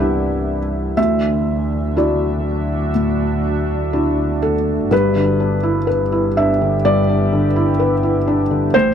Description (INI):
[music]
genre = neoclassical piano and strings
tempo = 62 BPM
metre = 4/4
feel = rubato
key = G major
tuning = A4 = 443 Hz
[part]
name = felt-muted upright piano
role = accompaniment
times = 0.0-8.9 s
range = D2 to F#5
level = -16 LUFS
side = equal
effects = none
[part]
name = deep dark ambient pad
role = sustained chords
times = 0.0-8.9 s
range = B3 to E5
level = -25 LUFS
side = right 2 dB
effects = chorus, built-in reverb
[part]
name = muted double bass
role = bass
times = 0.0-8.9 s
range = G1 to D2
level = -22 LUFS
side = equal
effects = none
[sound]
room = little or no reverb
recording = close, detailed microphones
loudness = -15 LUFS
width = side -8 dB against mid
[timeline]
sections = 0.0-4.9 A section; 4.9-8.9 B section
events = none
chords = 0.0 Cadd9; 1.0 Dadd9; 4.9 G6